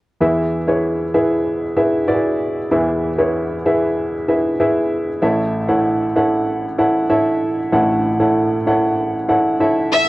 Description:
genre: pop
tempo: 96 BPM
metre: 4/4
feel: straight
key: unclear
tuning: A4 = 440 Hz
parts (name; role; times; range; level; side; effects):
- warm upright piano; accompaniment; 0.2-10.1 s; A1 to F#5; -15 LUFS; equal; none
- warm studio violin section; melody; 9.9-10.1 s; E5; -12 LUFS; left 1 dB; none
room: light reverb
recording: worn, warbling old tape, cassette tape, warbly pitch drift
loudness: -15 LUFS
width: side -18 dB against mid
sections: 0.2-10.1 A section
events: none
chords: 0.2 E; 5.2 A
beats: | 0.20 0.83 1.46 2.08 | 2.71 3.33 3.96 4.59 | 5.21 5.84 6.47 7.10 | 7.72 8.35 8.98 9.60

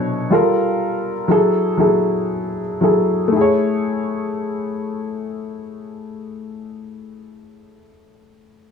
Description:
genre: R&B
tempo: 57-63 BPM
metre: 4/4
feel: swing 58% on 16ths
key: A major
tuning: A4 = 438 Hz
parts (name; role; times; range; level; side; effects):
- dark upright piano; solo; 0.0-8.7 s; B2 to C#5; -17 LUFS; left 1 dB; none
room: moderate studio reverb, RT60 0.8 s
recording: small room ambience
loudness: -16 LUFS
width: side -6 dB against mid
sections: 0.0-3.3 A section; 3.3-7.5 B section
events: slowing down 0.0-3.3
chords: 0.3 Gm9; 1.3 F#m9; 3.3 Amaj7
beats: 0.30 1.28 2.28 | 3.32 4.37 5.42 6.48

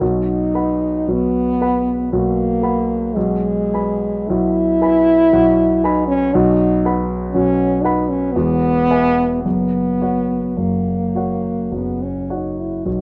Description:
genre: classical, romantic duo for French horn and grand piano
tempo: 51-61 BPM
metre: 3/4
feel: rubato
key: B major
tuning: A4 = 438 Hz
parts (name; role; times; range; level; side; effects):
- dark French horn; melody; 0.0-13.0 s; G#3 to E4; -20 LUFS; equal; none
- warm concert grand piano; accompaniment; 0.0-13.0 s; E1 to B5; -21 LUFS; equal; none
room: light reverb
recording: dark, warm production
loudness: -17 LUFS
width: mono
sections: 0.0-13.0 A section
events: none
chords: 0.0 B; 3.2 E/B; 6.3 B5; 8.3 E; 9.4 F#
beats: | 0.01 1.08 2.11 | 3.15 4.28 5.32 | 6.33 7.33 8.35 | 9.45 10.58 11.74 | 12.87

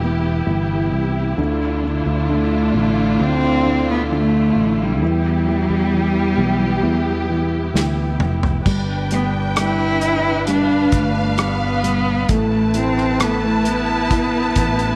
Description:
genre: pop ballad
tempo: 66 BPM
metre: 4/4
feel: straight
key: unclear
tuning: A4 = 440 Hz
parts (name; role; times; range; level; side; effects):
- dark baby grand piano; accompaniment; 0.0-15.0 s; D3 to E4; -26 LUFS; equal; none
- warm studio string section; sustained chords; 0.0-15.0 s; B3 to A5; -25 LUFS; equal; none
- fretless electric bass; bass; 0.0-15.0 s; E1 to E2; -24 LUFS; equal; none
- rich cello; melody; 2.3-15.0 s; G3 to E4; -22 LUFS; equal; none
- natural country drum kit; drums; 7.8-15.0 s; crash cymbal, hi-hat, kick drum, rim click, snare drum, toms; -24 LUFS; equal; none
room: light reverb, small room ambience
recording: none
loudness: -18 LUFS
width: mono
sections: 0.0-8.7 A section; 8.7-15.0 B section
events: drum fill 7.7-8.7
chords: 0.0 Em; 1.4 Dmadd9; 5.0 Em; 8.7 G; 12.3 Asus2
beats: 0.47 | 1.38 2.29 3.20 4.11 | 5.02 5.93 6.84 7.75 | 8.65 9.56 10.47 11.38 | 12.29 13.20 14.11

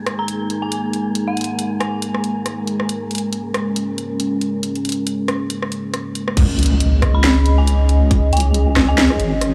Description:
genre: deep dubstep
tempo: 138 BPM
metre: 4/4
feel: swing 57% on 16ths, half-time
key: unclear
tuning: A4 = 439 Hz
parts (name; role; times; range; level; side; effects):
- dark analog pad; sustained chords; 0.0-9.5 s; G#3 to D#5; -24 LUFS; equal; chorus
- wind-like tuned noise texture; texture; 0.0-6.4 s; A#3 to G#4; -33 LUFS; equal; built-in reverb
- garage drum kit; drums; 0.1-9.5 s; crash cymbal, hi-hat, rim click, snare drum; -23 LUFS; equal; overdrive
- dark detuned synth bell; melody; 0.2-2.2, 7.1-9.1 s; F#5 to B5; -29 LUFS; equal; chorus, dub echo
- deep soft wobble bass; bass; 6.4-9.5 s; G#1 to C#2; -18 LUFS; equal; chorus
- electronic kick drum; drums; 6.4-8.9 s; none; -18 LUFS; equal; overdrive
- impact; sound effects; 6.4-8.1 s; none; -25 LUFS; equal; none
room: light reverb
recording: small room ambience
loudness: -18 LUFS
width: mono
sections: 0.0-6.4 A section; 6.4-9.5 B section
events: drop 6.4-9.5; impact 6.4-8.1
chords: 0.0 G#sus2; 6.4 C#5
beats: 0.28 0.72 | 1.15 1.59 2.02 2.46 | 2.89 3.33 3.76 4.20 | 4.63 5.07 5.50 5.93 | 6.37 6.80 7.24 7.67 | 8.11 8.54 8.98 9.41

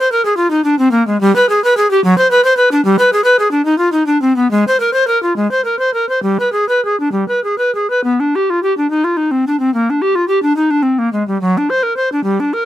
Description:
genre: classical, baroque-style fantasia for unaccompanied recorder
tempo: 63-76 BPM (dotted quarters)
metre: 6/8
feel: rubato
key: unclear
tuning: A4 = 440 Hz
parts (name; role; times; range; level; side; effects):
- bright bass recorder; solo; 0.0-12.7 s; F#3 to C5; -11 LUFS; equal; none
room: light reverb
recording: close, detailed microphones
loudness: -11 LUFS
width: side -13 dB against mid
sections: 0.0-8.0 A section; 8.0-12.7 B section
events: none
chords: none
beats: 0.36 | 1.21 2.03 | 2.82 3.63 | 4.50 5.35 | 6.23 7.12 | 8.04 8.89 | 9.73 10.55 | 11.39 12.22

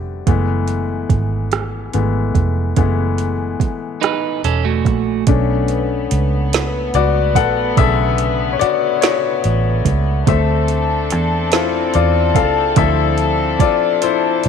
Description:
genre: slow six-eight R&B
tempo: 48 BPM (dotted quarters)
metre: 6/8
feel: straight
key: B dorian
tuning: A4 = 440 Hz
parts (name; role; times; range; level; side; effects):
- bright grand piano; accompaniment; 0.0-14.5 s; C#3 to F#5; -18 LUFS; left 10 dB; none
- vintage muted fingered electric bass; bass; 0.0-14.5 s; E1 to E2; -18 LUFS; right 2 dB; none
- smooth R&B drum kit; drums; 0.3-14.5 s; hi-hat, kick drum, rim click, snare drum; -18 LUFS; right 6 dB; none
- electric guitar at the edge of break-up; second line; 4.0-5.2 s; A3 to B4; -19 LUFS; right 12 dB; none
- warm studio string section; sustained chords; 5.3-14.5 s; A3 to A4; -22 LUFS; left 1 dB; none
room: light reverb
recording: 1960s-style stereo with parts hard left and right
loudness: -14 LUFS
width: side -7 dB against mid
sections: 0.0-5.3 A section; 5.3-14.5 B section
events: grand piano solo 0.0-5.3, 5.3-14.5; drum fill 14.0-14.5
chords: 0.3 F#m11; 5.3 Bm9; 10.3 Dm9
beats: | 0.27 1.52 | 2.77 4.02 | 5.27 6.52 | 7.77 9.02 | 10.27 11.52 | 12.77 14.02

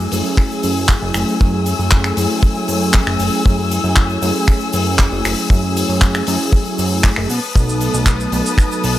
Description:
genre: nu-disco, nu disco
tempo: 117 BPM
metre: 4/4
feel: straight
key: F# dorian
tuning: A4 = 437 Hz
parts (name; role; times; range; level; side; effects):
- mellow synth brass; accompaniment; 0.0-9.0 s; F#3 to A4; -20 LUFS; right 1 dB; chorus, sidechain pumping, tape echo
- muted studio string section; sustained chords; 0.0-9.0 s; A3 to E6; -24 LUFS; left 2 dB; sidechain pumping
- fat analog bass; bass; 0.0-9.0 s; F#1 to B2; -20 LUFS; equal; transformer saturation
- tube shaker; percussion; 0.0-8.9 s; none; -32 LUFS; right 4 dB; none
- damped 70s drum kit; drums; 0.1-8.9 s; finger snaps, handclaps, hi-hat, shaker; -21 LUFS; left 1 dB; studio reverb
- kick drum; drums; 0.4-8.7 s; none; -13 LUFS; equal; studio reverb
room: studio ambience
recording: dry, gritty hardware recording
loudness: -13 LUFS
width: side -14 dB against mid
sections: 0.0-9.0 A section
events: none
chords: 0.0 F#m9; 7.3 B7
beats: 0.38 0.89 | 1.40 1.92 2.43 2.94 | 3.46 3.97 4.48 4.99 | 5.51 6.02 6.53 7.04 | 7.56 8.07 8.58

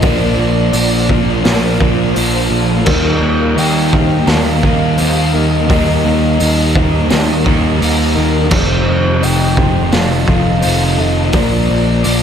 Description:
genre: rock, shoegaze and dream pop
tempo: 85 BPM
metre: 4/4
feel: straight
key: unclear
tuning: A4 = 440 Hz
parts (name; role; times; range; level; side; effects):
- pure breathy sine lead; melody; 0.0-12.2 s; Bb4 to G5; -22 LUFS; left 1 dB; chorus, tape echo
- granular cloud pad; sustained chords; 0.0-12.2 s; F4 to A5; -25 LUFS; equal; built-in reverb
- direct-recorded clean electric guitar; arpeggios; 0.0-12.2 s; A4 to Eb5; -25 LUFS; left 12 dB; ensemble chorus, tape echo
- overdriven semi-hollow guitar; riff; 0.0-12.2 s; F2 to Eb4; -18 LUFS; right 14 dB; reverse reverb
- thick fuzz guitar; riff; 0.0-12.2 s; F2 to Eb4; -18 LUFS; left 12 dB; distortion, wide subtle chorus
- modern bright picked electric bass; bass; 0.0-12.2 s; F1 to Eb2; -16 LUFS; equal; none
- raw garage drum kit; drums; 0.0-12.2 s; crash cymbal, hi-hat, kick drum, snare drum; -17 LUFS; equal; none
room: small room reverb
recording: none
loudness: -11 LUFS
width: side -8 dB against mid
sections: 0.0-12.2 A section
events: none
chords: 0.0 Bbadd9; 2.9 Eb; 8.5 F7; 11.3 Bbadd9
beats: | 0.03 0.74 1.45 2.16 | 2.87 3.57 4.28 4.99 | 5.70 6.40 7.11 7.81 | 8.52 9.23 9.93 10.64 | 11.34 12.05

